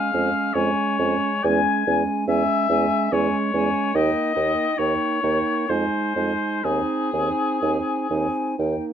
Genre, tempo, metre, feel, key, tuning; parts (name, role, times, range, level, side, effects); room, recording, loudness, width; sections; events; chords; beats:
classical, slow romantic movement for wind quintet; 61-74 BPM; 3/4; rubato; Ab major; A4 = 441 Hz
silver concert flute; melody; 0.0-8.8 s; G5 to Ab5; -29 LUFS; left 4 dB
warm oboe; second line; 0.0-8.6 s; Ab4 to Ab5; -24 LUFS; left 5 dB
mellow French horn; accompaniment; 0.0-8.9 s; Ab3 to C4; -29 LUFS; equal
warm clarinet; accompaniment; 0.0-8.9 s; Db4 to Eb4; -27 LUFS; right 10 dB
mellow bassoon; bass; 0.1-8.7 s; Eb2 to F2; -24 LUFS; right 3 dB
light reverb; close, detailed microphones; -20 LUFS; side -9 dB against mid
0.0-8.9 A section
0.0 Db/F; 1.4 Dbm/Fb; 3.9 Eb; 5.7 Fm7; 6.6 Ab/Eb
0.55 | 1.45 2.28 3.12 | 3.95 4.79 5.69 | 6.64 7.62 8.59